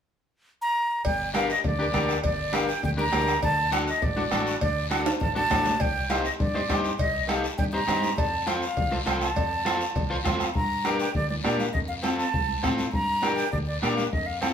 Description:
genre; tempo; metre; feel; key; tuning
latin, cumbia; 202 BPM; 4/4; straight; G minor; A4 = 445 Hz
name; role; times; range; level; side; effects
breathy concert flute; melody; 0.6-14.5 s; D5 to Bb5; -28 LUFS; equal; none
congas; percussion; 1.0-14.5 s; none; -36 LUFS; right 4 dB; none
cowbell and timbales; percussion; 1.0-10.4 s; none; -34 LUFS; equal; none
guiro; percussion; 1.0-14.5 s; none; -37 LUFS; left 4 dB; none
fingered electric bass; bass; 1.1-14.5 s; G1 to Bb2; -32 LUFS; equal; none
bombo; percussion; 1.1-14.5 s; none; -30 LUFS; right 1 dB; none
electric guitar at the edge of break-up; accompaniment; 1.3-14.5 s; C4 to C5; -29 LUFS; left 2 dB; none
room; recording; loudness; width
wet studio reverb, RT60 0.9 s; band playing live in one room; -23 LUFS; side -8 dB against mid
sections
0.0-1.1 A section; 1.1-10.6 B section; 10.6-14.5 C section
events
drum fill 5.1-5.8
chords
0.0 N.C.; 1.1 Gm; 3.4 D; 5.8 Cm; 8.2 F; 10.6 Gm; 11.7 F; 12.9 Gm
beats
0.16 0.46 0.75 | 1.05 1.35 1.64 1.94 | 2.24 2.54 2.83 3.13 | 3.43 3.72 4.02 4.32 | 4.62 4.91 5.21 5.51 | 5.80 6.10 6.40 6.69 | 6.99 7.29 7.58 7.88 | 8.18 8.48 8.77 9.07 | 9.37 9.66 9.96 10.26 | 10.56 10.85 11.15 11.45 | 11.75 12.04 12.34 12.64 | 12.94 13.23 13.53 13.83 | 14.13 14.43

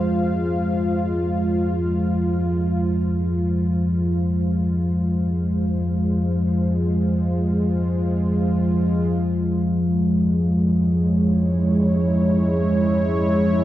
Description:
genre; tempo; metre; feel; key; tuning
dark ambient drone; free time; none; none; F minor; A4 = 438 Hz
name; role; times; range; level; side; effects
dark analog pad; sustained chords; 0.0-13.6 s; Ab3 to F5; -23 LUFS; right 1 dB; chorus
deep rumbling drone; drone; 0.0-13.6 s; F2 to F3; -20 LUFS; equal; built-in reverb, lush chorus
room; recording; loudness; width
wet spring reverb, RT60 2.7 s; none; -18 LUFS; side -14 dB against mid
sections
0.0-13.6 A section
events
none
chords
0.0 Fm; 9.1 Dbmadd9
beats
free time

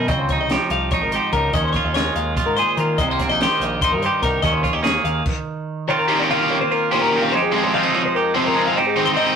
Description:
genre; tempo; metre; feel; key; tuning
math rock and midwest emo; 290 BPM (eighths); 7/8; straight; unclear; A4 = 440 Hz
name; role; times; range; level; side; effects
clean electric guitar; accompaniment; 0.0-9.4 s; F2 to Ab4; -21 LUFS; right 5 dB; none
twelve-string electric guitar; arpeggios; 0.0-9.4 s; Ab4 to F5; -21 LUFS; left 5 dB; none
growling picked electric bass; bass; 0.0-5.2 s; Ab1 to Eb3; -25 LUFS; equal; overdrive
compact cocktail drum kit; drums; 0.1-5.4 s; crash cymbal, hi-hat, kick drum, snare drum; -25 LUFS; equal; none
cranked stack guitar; riff; 6.1-9.4 s; Eb3 to G4; -20 LUFS; equal; overdrive
room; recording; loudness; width
moderate studio reverb, RT60 0.7 s; rough rehearsal-room recording, warm saturation; -16 LUFS; side -7 dB against mid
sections
0.0-5.9 A section; 5.9-9.4 B section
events
stop 5.3-5.9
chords
0.1 Dbmaj9; 1.5 Eb9sus4; 3.0 Cm7; 4.4 Eb7(no3); 5.9 Eb13; 7.3 Fm9; 8.8 Abmaj7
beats
| 0.09 0.29 0.50 0.71 0.92 1.12 1.33 | 1.53 1.74 1.95 2.16 2.36 2.57 2.78 | 2.98 3.19 3.40 3.60 3.81 4.02 4.22 | 4.43 4.64 4.84 5.05 5.26 5.46 5.67 | 5.88 6.08 6.29 6.50 6.70 6.91 7.11 | 7.32 7.53 7.73 7.94 8.14 8.35 8.55 | 8.76 8.96 9.17

